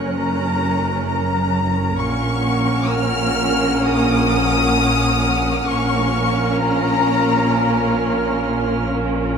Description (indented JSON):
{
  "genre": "cinematic, suspense film score",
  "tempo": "65 BPM",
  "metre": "4/4",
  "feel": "straight",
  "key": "Bb minor",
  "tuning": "A4 = 441 Hz",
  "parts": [
    { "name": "warm studio violin section", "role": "melody", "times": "0.0-8.4 s", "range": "Db5 to F6", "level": "-22 LUFS", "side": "left 5 dB", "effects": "none" },
    { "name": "rich studio viola section", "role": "accompaniment", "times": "0.0-9.3 s", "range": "Db4 to Bb4", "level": "-20 LUFS", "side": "right 1 dB", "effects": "none" },
    { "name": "rich studio cello section", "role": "bass", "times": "0.0-9.3 s", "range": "Gb2 to Bb2", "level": "-24 LUFS", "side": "right 2 dB", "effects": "none" },
    { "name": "rich studio double bass section", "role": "bass", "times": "0.0-9.3 s", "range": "Gb1 to Bb1", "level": "-23 LUFS", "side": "right 2 dB", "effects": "none" },
    { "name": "rich studio violin section", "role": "texture", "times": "0.0-8.9 s", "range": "Gb5 to Bb6", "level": "-29 LUFS", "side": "left 4 dB", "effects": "none" }
  ],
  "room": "moderate concert hall reverb, RT60 1.9 s",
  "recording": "none",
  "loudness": "-16 LUFS",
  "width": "side -6 dB against mid",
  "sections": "0.0-9.4 A section",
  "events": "none",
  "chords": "0.0 Gb; 2.0 Bbm"
}